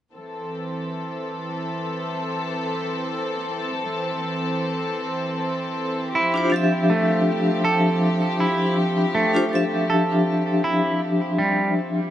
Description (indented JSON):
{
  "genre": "trip hop",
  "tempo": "80 BPM",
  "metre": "4/4",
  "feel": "swing 54% on 16ths",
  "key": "A minor",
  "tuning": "A4 = 441 Hz",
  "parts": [
    { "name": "warm studio string section", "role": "sustained chords", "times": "0.1-12.1 s", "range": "E3 to A4", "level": "-26 LUFS", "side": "equal", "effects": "none" },
    { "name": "semi-hollow electric guitar", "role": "arpeggios", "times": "6.2-11.7 s", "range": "G3 to A4", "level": "-23 LUFS", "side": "right 2 dB", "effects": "tape echo" },
    { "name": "vibraphone with medium hard mallets", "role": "accompaniment", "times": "6.3-12.1 s", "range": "F3 to E5", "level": "-21 LUFS", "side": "left 1 dB", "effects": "tremolo, tape echo" }
  ],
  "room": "moderate spring reverb, RT60 1.6 s, studio ambience",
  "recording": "nothing above 10.7 kHz",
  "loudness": "-20 LUFS",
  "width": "side -11 dB against mid",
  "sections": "0.1-12.1 A section",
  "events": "none",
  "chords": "0.1 Am; 6.1 G7sus4",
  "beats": "| 0.15 0.90 1.65 2.40 | 3.15 3.90 4.65 5.40 | 6.15 6.90 7.65 8.40 | 9.15 9.90 10.65 11.40"
}